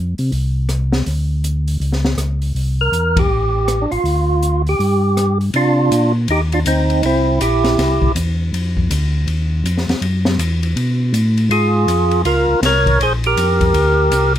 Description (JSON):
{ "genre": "soul jazz organ trio", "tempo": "161 BPM", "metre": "4/4", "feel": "swing 64% on 8ths", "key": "unclear", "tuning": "A4 = 443 Hz", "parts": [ { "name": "mellow tonewheel organ", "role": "bass", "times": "0.0-14.4 s", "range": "A1 to C3", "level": "-17 LUFS", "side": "equal", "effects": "chorus vibrato, slow rotary speaker" }, { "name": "open jazz drum kit", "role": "drums", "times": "0.2-14.4 s", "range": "hi-hat, kick drum, ride cymbal, rim click, snare drum", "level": "-23 LUFS", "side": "left 2 dB", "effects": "none" }, { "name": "percussive tonewheel organ", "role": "melody", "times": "2.8-8.1, 11.5-14.3 s", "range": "C4 to Db5", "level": "-16 LUFS", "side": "right 1 dB", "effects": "slow rotary speaker, overdrive" } ], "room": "little or no reverb", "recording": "none", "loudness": "-14 LUFS", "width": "side -11 dB against mid", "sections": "0.0-5.5 A section; 5.5-14.4 B section", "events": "band accent 3.1", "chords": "0.0 F5; 1.1 N.C.; 2.6 C7; 3.3 Dmadd11/A; 4.1 Dmadd11; 4.8 N.C.; 5.5 Cm11; 7.0 C7; 8.5 Dm; 10.0 Esus2; 10.8 Asus2; 11.5 Db6; 13.0 Bbadd9" }